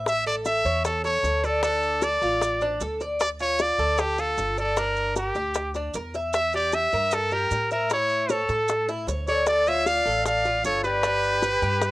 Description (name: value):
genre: latin, Cuban son and guajira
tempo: 153 BPM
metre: 4/4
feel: straight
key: D harmonic minor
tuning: A4 = 440 Hz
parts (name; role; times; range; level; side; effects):
- Cuban tres; arpeggios; 0.0-11.9 s; D4 to E5; -29 LUFS; equal; cassette tape
- upright bass; bass; 0.0-11.9 s; G1 to A2; -32 LUFS; equal; none
- brilliant trumpet; melody; 0.1-11.9 s; G4 to F5; -23 LUFS; equal; cassette tape
- bongos; percussion; 0.1-11.9 s; none; -30 LUFS; left 4 dB; none
- maracas; percussion; 0.1-11.9 s; none; -39 LUFS; right 7 dB; none
- breathy bright silver concert flute; second line; 9.3-11.9 s; G4 to D5; -29 LUFS; left 2 dB; cassette tape
room: moderate booth ambience, RT60 0.2 s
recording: home recording on cassette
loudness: -22 LUFS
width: side -18 dB against mid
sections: 0.0-3.2 A section; 3.2-11.9 A section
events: none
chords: 0.1 A; 1.6 Dm; 4.8 Gm; 6.3 Edim; 7.9 A; 9.5 Dm; 11.0 G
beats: | 0.07 0.46 0.85 1.24 | 1.63 2.03 2.42 2.81 | 3.20 3.59 3.99 4.38 | 4.77 5.16 5.55 5.95 | 6.34 6.73 7.12 7.51 | 7.90 8.30 8.69 9.08 | 9.47 9.86 10.25 10.64 | 11.04 11.43 11.82